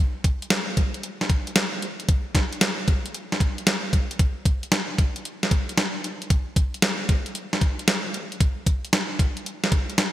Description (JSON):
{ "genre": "R&B", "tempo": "114 BPM", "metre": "4/4", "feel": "swing 67% on 16ths", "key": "none", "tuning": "none", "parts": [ { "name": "crisp 8-bit digital drum machine", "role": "drums", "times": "0.2-10.1 s", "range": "hi-hat, kick drum, snare drum", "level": "-21 LUFS", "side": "equal", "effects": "gated reverb" } ], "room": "moderate lush hall reverb, RT60 2.5 s", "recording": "bright 1980s-style digital production", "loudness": "-21 LUFS", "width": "side -14 dB against mid", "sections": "0.0-10.1 A section", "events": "none", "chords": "none" }